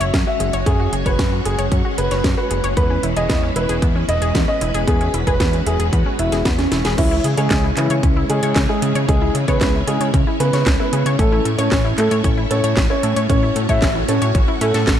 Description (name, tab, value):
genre	italo disco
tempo	114 BPM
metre	4/4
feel	straight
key	C# minor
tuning	A4 = 440 Hz
part	dark concert grand piano	melody	0.0-14.9 s	E3 to E5	-22 LUFS	right 1 dB	ping-pong delay
part	string machine, full ensemble	sustained chords	0.0-15.0 s	G#3 to C#5	-24 LUFS	equal	ensemble chorus
part	analog pluck	arpeggios	0.0-14.9 s	B3 to C#5	-26 LUFS	left 3 dB	chorus, ping-pong delay
part	fat analog bass	bass	0.0-15.0 s	E1 to C#3	-20 LUFS	equal	none
part	house drum kit	drums	0.0-15.0 s	crash cymbal, handclaps, hi-hat, snare drum	-25 LUFS	equal	none
part	electronic kick drum	drums	0.1-15.0 s	none	-19 LUFS	equal	none
room	light reverb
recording	dark, warm production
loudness	-15 LUFS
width	side -10 dB against mid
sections	0.0-7.0 A section; 7.0-15.0 B section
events	drum fill 6.6-7.0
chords	0.0 F#sus2; 2.8 E6; 7.0 C#m; 11.2 A